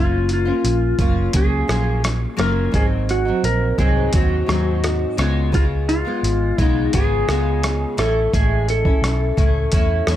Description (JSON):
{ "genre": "indie pop, bedroom pop", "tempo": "86 BPM", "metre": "4/4", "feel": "straight", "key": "F# major", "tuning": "A4 = 440 Hz", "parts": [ { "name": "clean lap steel guitar", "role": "melody", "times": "0.0-10.2 s", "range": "E#4 to A#4", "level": "-22 LUFS", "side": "left 1 dB", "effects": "wide subtle chorus, tape echo" }, { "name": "nylon-string guitar", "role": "accompaniment", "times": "0.0-10.2 s", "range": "G#2 to E#4", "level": "-24 LUFS", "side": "left 1 dB", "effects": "analog chorus, warbly pitch drift" }, { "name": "vintage muted fingered electric bass", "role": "bass", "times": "0.0-10.2 s", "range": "F#1 to E2", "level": "-20 LUFS", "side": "equal", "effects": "none" }, { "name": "lo-fi sampler-style drum kit", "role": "drums", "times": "0.3-10.2 s", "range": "hi-hat, kick drum, rim click", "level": "-21 LUFS", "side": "equal", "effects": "overdrive" } ], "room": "digital ambience", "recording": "none", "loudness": "-16 LUFS", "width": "side -12 dB against mid", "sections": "0.0-10.2 A section", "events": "none", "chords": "0.0 F#maj7; 2.7 G#7; 5.2 C#7; 8.0 Amaj7" }